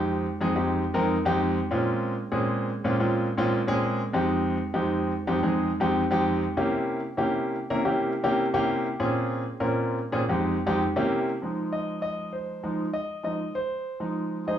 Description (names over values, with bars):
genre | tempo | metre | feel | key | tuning
jazz | 198 BPM | 4/4 | straight | F minor | A4 = 438 Hz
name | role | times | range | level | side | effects
warm grand piano | solo | 0.0-14.6 s | F2 to Eb5 | -24 LUFS | equal | none
room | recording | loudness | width
wet large studio reverb, RT60 0.8 s | heard from further back in the room, small room ambience | -24 LUFS | side -10 dB against mid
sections
0.0-11.4 A section; 11.4-14.6 B section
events
grand piano solo 11.4-14.6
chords
0.0 Fm7; 1.7 Bbm7; 4.1 Fm7; 6.6 C7b9; 9.0 Bbm7; 10.2 Fm7; 10.8 C7b9; 11.4 Fm7